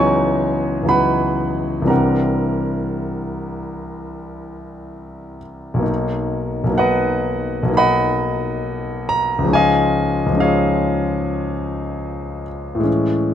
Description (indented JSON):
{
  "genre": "classical, impressionist solo piano",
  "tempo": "57-75 BPM",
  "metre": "4/4",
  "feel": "rubato",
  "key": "unclear",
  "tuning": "A4 = 443 Hz",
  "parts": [
    { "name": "warm concert grand piano", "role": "solo", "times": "0.0-13.3 s", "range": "B1 to C#6", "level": "-17 LUFS", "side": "equal", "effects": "none" }
  ],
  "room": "light reverb",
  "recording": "close, detailed microphones",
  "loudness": "-17 LUFS",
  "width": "side -9 dB against mid",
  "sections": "0.0-5.9 A section; 5.9-13.3 B section",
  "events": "none",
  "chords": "0.0 C#m11; 1.9 C9; 5.9 Bmaj7; 9.5 C#add9"
}